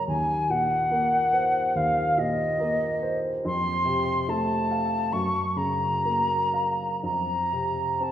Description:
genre	classical, romantic duo for flute and grand piano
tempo	60-73 BPM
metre	4/4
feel	rubato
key	unclear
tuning	A4 = 442 Hz
part	silver concert flute	melody	0.0-8.1 s	Eb5 to Db6	-24 LUFS	equal	none
part	warm concert grand piano	accompaniment	0.0-8.1 s	Eb2 to F5	-28 LUFS	right 1 dB	none
room	wet recital hall reverb, RT60 1.4 s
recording	recorded in a church or concert hall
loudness	-23 LUFS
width	side -10 dB against mid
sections	0.0-8.1 A section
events	none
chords	0.1 Cm7b5/Eb; 3.5 F; 5.1 Gbmaj7; 7.0 F5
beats	| 0.08 0.92 1.75 2.60 | 3.46 4.29 5.14 6.05 | 7.04 8.02

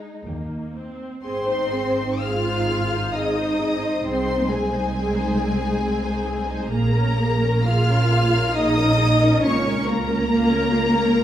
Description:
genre	classical, slow romantic movement for string orchestra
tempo	66 BPM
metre	3/4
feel	uneven beats, rubato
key	Ab major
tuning	A4 = 440 Hz
part	rich studio violin section	melody	0.0-11.2 s	G5 to F6	-27 LUFS	left 3 dB	none
part	warm studio violin section	second line	0.0-11.2 s	Eb4 to F5	-26 LUFS	left 2 dB	none
part	rich studio viola section	accompaniment	0.0-11.2 s	Ab3 to C5	-27 LUFS	right 1 dB	none
part	warm studio cello section	bass	0.3-11.2 s	Eb2 to F4	-24 LUFS	equal	none
part	warm studio double bass section	bass	0.3-11.2 s	Ab1 to Eb2	-24 LUFS	right 2 dB	none
room	wet recital hall reverb, RT60 1.6 s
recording	heard from further back in the room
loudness	-18 LUFS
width	side -11 dB against mid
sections	0.0-1.2 A section; 1.2-11.2 B section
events	none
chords	0.3 Eb; 1.2 Ab; 4.1 Ab/C; 6.7 Bbm7; 9.4 Bbm/Db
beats	0.27 | 1.24 2.23 3.15 | 4.05 4.95 5.82 | 6.71 7.66 8.55 | 9.43 10.29 11.15

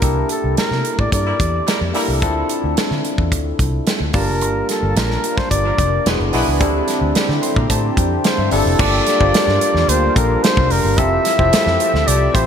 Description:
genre	polished 1980s jazz-funk pop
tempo	110 BPM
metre	4/4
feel	straight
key	unclear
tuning	A4 = 439 Hz
part	breathy flugelhorn	melody	0.0-12.5 s	A4 to E5	-20 LUFS	left 1 dB	none
part	barky tine electric piano	accompaniment	0.0-12.5 s	Bb3 to C6	-20 LUFS	left 1 dB	overdrive, wide subtle chorus
part	vintage muted fingered electric bass	bass	0.0-12.5 s	E1 to D3	-20 LUFS	equal	none
part	modern studio drum kit	drums	0.0-12.5 s	crash cymbal, hi-hat, kick drum, snare drum	-19 LUFS	right 1 dB	gated reverb
part	warm horn section	second line	1.3-2.1, 5.6-6.5 s	F3 to B4	-28 LUFS	right 1 dB	none
part	warm analog pad	sustained chords	4.4-12.5 s	D3 to A5	-26 LUFS	equal	chorus
room	moderate lush hall reverb, RT60 2.7 s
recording	bright 1980s-style digital production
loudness	-14 LUFS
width	side -8 dB against mid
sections	0.0-8.8 A section; 8.8-12.5 B section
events	tine electric piano fill 7.2-8.8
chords	0.0 C13; 2.2 Dm7; 4.1 Gm9; 6.1 E7; 6.6 Fmaj9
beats	| 0.03 0.58 1.13 1.68 | 2.22 2.77 3.32 3.87 | 4.42 4.96 5.51 6.06 | 6.61 7.15 7.70 8.25 | 8.79 9.34 9.89 10.44 | 10.98 11.53 12.07

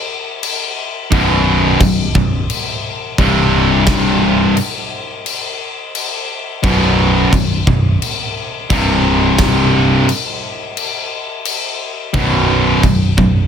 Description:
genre	heavy metal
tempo	87 BPM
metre	4/4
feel	straight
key	unclear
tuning	A4 = 442 Hz
part	big rock drum kit	drums	0.4-13.3 s	crash cymbal, kick drum, snare drum	-18 LUFS	equal	none
part	distorted electric guitar	riff	1.1-13.5 s	B1 to C3	-17 LUFS	left 9 dB	overdrive
part	distorted electric guitar	riff	1.1-13.5 s	B1 to C3	-17 LUFS	right 8 dB	distortion
part	distorted electric guitar	riff	1.1-13.5 s	B1 to C3	-18 LUFS	equal	distortion
part	picked electric bass	bass	1.1-13.5 s	B0 to C1	-18 LUFS	equal	none
room	little or no reverb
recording	dense, heavily limited modern master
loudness	-13 LUFS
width	side -8 dB against mid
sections	0.0-13.5 A section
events	half time 0.0-13.5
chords	0.0 N.C.; 1.1 B5; 3.2 C5; 6.6 B5; 8.7 C5; 12.2 B5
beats	0.42 | 1.12 1.81 2.50 3.19 | 3.88 4.57 5.26 5.95 | 6.64 7.33 8.02 8.71 | 9.40 10.09 10.78 11.47 | 12.16 12.85

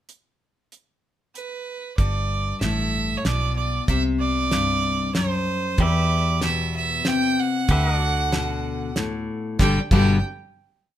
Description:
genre	honky-tonk and classic country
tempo	95 BPM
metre	3/4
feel	straight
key	G major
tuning	A4 = 439 Hz
part	damped 70s drum kit	drums	0.1-10.1 s	crash cymbal, hi-hat, kick drum, snare drum	-23 LUFS	right 1 dB	none
part	bright fiddle	second line	1.4-10.2 s	B4 to G5	-26 LUFS	right 5 dB	none
part	picked steel-string acoustic guitar	accompaniment	2.0-10.2 s	E2 to G4	-24 LUFS	left 4 dB	none
part	vintage muted fingered electric bass	bass	2.0-10.2 s	G1 to E2	-26 LUFS	right 1 dB	none
part	pedal steel guitar	sustained chords	5.8-9.6 s	F#4 to E5	-32 LUFS	left 1 dB	none
room	moderate studio reverb, RT60 0.7 s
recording	minimal, uncompressed stereo recording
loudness	-20 LUFS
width	side -12 dB against mid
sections	0.1-2.0 pickup bar; 2.0-9.6 verse; 9.6-11.0 final chord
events	fiddle solo 2.0-9.6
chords	0.1 N.C.; 2.0 G; 3.9 C5; 5.8 Em; 7.7 D; 9.6 G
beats	| 0.08 0.71 1.35 | 1.98 2.62 3.25 | 3.88 4.52 5.15 | 5.79 6.42 7.06 | 7.69 8.32 8.96 | 9.59

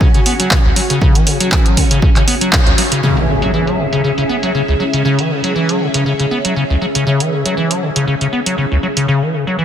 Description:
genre	acid house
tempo	119 BPM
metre	4/4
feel	swing 55% on 16ths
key	C# minor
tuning	A4 = 439 Hz
part	string machine, full ensemble	sustained chords	0.0-9.0 s	C#4 to G#5	-20 LUFS	equal	phaser, ensemble chorus, sidechain pumping
part	acid bass, square	riff	0.0-9.6 s	C#2 to B3	-16 LUFS	left 1 dB	lush chorus, cassette tape, sidechain pumping, dub echo
part	electronic kick drum	drums	0.0-2.6 s	none	-12 LUFS	equal	none
part	punchy analog drum machine	drums	0.1-9.1 s	handclaps, hi-hat	-18 LUFS	right 1 dB	low-pass filter on hats, low-pass filter on snare, low-pass filter on room
part	impact	sound effects	3.0-5.0 s	none	-20 LUFS	equal	none
room	moderate lush hall reverb, RT60 2.8 s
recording	none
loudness	-12 LUFS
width	side -9 dB against mid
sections	0.0-3.0 A section; 3.0-9.6 B section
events	band accent 2.5; impact 3.0-5.0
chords	0.0 C#5; 3.0 C#m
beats	0.01 0.51 | 1.01 1.52 2.02 2.53 | 3.03 3.54 4.04 4.54 | 5.05 5.55 6.06 6.56 | 7.07 7.57 8.07 8.58 | 9.08 9.59

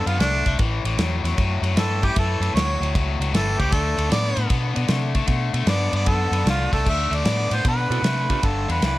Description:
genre	electric blues shuffle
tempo	153 BPM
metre	4/4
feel	swing 66% on 8ths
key	D mixolydian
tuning	A4 = 440 Hz
part	warm harmonica	melody	0.0-9.0 s	D4 to E5	-26 LUFS	right 2 dB	overdrive
part	overdriven electric guitar	riff	0.0-9.0 s	G2 to B3	-26 LUFS	left 5 dB	spring reverb
part	vintage muted fingered electric bass	bass	0.0-9.0 s	G1 to C3	-23 LUFS	equal	none
part	warm soul drum kit	drums	0.1-8.9 s	crash cymbal, kick drum, ride cymbal, snare drum	-24 LUFS	equal	none
part	percussive tonewheel organ	accompaniment	7.9-8.4 s	B3 to A4	-30 LUFS	right 7 dB	slow rotary speaker, overdrive, chorus vibrato
room	little or no reverb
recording	none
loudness	-19 LUFS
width	side -16 dB against mid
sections	0.0-6.9 A section; 6.9-9.0 B section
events	harmonica solo 0.0-6.9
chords	0.0 D7; 0.6 A7; 3.7 D7(no3); 6.9 D9; 8.4 Gadd9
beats	0.19 | 0.58 0.98 1.37 1.76 | 2.15 2.54 2.94 3.33 | 3.72 4.11 4.50 4.89 | 5.29 5.68 6.07 6.46 | 6.85 7.24 7.64 8.03 | 8.42 8.81

